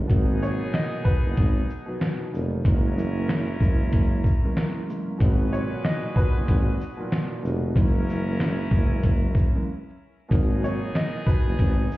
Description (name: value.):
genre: hip hop, boom-bap hip-hop.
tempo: 94 BPM.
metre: 4/4.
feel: swing 59% on 16ths.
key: G# minor.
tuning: A4 = 440 Hz.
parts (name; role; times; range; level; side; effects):
dark concert grand piano; accompaniment; 0.0-11.9 s; F#2 to B3; -30 LUFS; right 2 dB; cassette tape, high-pass filter, low-pass filter, plate reverb.
breathy tuba; bass; 0.0-11.9 s; E#1 to G#1; -26 LUFS; equal; none.
bright trumpet section; stabs; 0.1-12.0 s; B3 to B4; -37 LUFS; left 3 dB; high-pass filter, low-pass filter, plate reverb, digital delay.
trip hop sampler-style drum kit; drums; 0.1-12.0 s; hi-hat, kick drum, shaker, snare drum; -22 LUFS; equal; none.
bright upright piano; melody; 0.4-12.0 s; B4 to D#5; -34 LUFS; equal; high-pass filter, low-pass filter, plate reverb, digital delay.
room: light reverb.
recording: heard muffled through a wall, stone room reverb, vinyl crackle, EQ.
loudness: -21 LUFS.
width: side -17 dB against mid.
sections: 0.1-12.0 A section.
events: break 9.7-10.3.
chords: 0.1 G#m7; 2.7 F#9; 5.2 G#m7; 7.8 F#9; 10.3 G#m7.